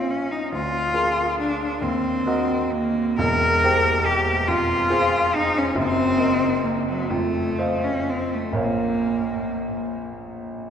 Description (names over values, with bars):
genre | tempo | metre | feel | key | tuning
classical, romantic duo for cello and grand piano | 40-48 BPM (dotted quarters) | 6/8 | rubato | Bb minor | A4 = 439 Hz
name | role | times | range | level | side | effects
rich cello | melody | 0.0-10.0 s | Gb3 to Bb4 | -21 LUFS | left 1 dB | none
clear concert grand piano | accompaniment | 0.0-10.7 s | E1 to G5 | -24 LUFS | right 1 dB | none
room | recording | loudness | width
wet cathedral reverb, RT60 5.2 s | recorded in a church or concert hall | -19 LUFS | side -8 dB against mid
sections
0.0-10.7 A section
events
none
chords
0.0 Bbm; 0.5 Bb7/D; 1.8 Ebm; 3.2 C7/E; 4.5 Fm; 5.8 Ebm/Gb; 7.1 F7; 8.6 Bbm